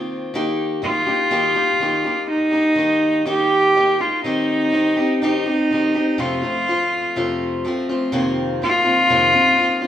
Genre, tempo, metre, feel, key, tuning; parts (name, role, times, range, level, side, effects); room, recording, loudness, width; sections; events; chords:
acoustic folk duo or small band; 62 BPM; 4/4; straight; F mixolydian; A4 = 440 Hz
picked steel-string acoustic guitar; accompaniment; 0.0-9.9 s; F2 to G4; -22 LUFS; left 1 dB
rich cello; melody; 0.8-9.9 s; Eb4 to G4; -16 LUFS; equal
wet stone room reverb, RT60 1.3 s; band playing live in one room; -16 LUFS; side -10 dB against mid
0.0-8.1 A section; 8.1-9.9 A section
0.3 Eb; 4.2 Cm/Eb; 6.2 F; 8.1 F7sus4